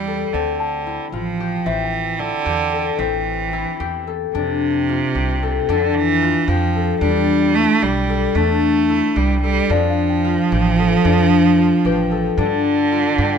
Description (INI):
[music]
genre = contemporary instrumental, chamber music in an uneven meter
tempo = 224 BPM (eighths)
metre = 5/8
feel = straight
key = unclear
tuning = A4 = 440 Hz
[part]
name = clear cello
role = second line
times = 0.0-13.4 s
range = C3 to A3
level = -19 LUFS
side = right 6 dB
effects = none
[part]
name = concert harp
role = arpeggios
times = 0.0-13.4 s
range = C4 to A4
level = -19 LUFS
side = left 6 dB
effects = none
[part]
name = upright bass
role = bass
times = 0.0-13.4 s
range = A1 to G2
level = -23 LUFS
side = right 1 dB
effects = none
[part]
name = small celesta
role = texture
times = 0.0-2.5, 9.7-12.5 s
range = B4 to A5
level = -26 LUFS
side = left 8 dB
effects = none
[sound]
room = light reverb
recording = close, detailed microphones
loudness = -16 LUFS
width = side -7 dB against mid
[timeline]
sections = 0.0-4.3 A section; 4.3-13.4 B section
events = none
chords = 0.3 Dm7; 1.7 Am7; 4.3 F6; 7.0 Em7; 9.7 Dm; 12.4 Gsus2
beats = 0.07 | 0.34 0.60 0.86 1.13 1.39 | 1.66 1.92 2.19 2.46 2.73 | 3.00 3.26 3.53 3.80 4.08 | 4.35 4.62 4.89 5.16 5.42 | 5.69 5.96 6.22 6.49 6.75 | 7.02 7.28 7.55 7.82 8.09 | 8.35 8.62 8.89 9.16 9.43 | 9.71 9.98 10.25 10.52 10.78 | 11.05 11.32 11.59 11.86 12.12 | 12.39 12.66 12.93 13.19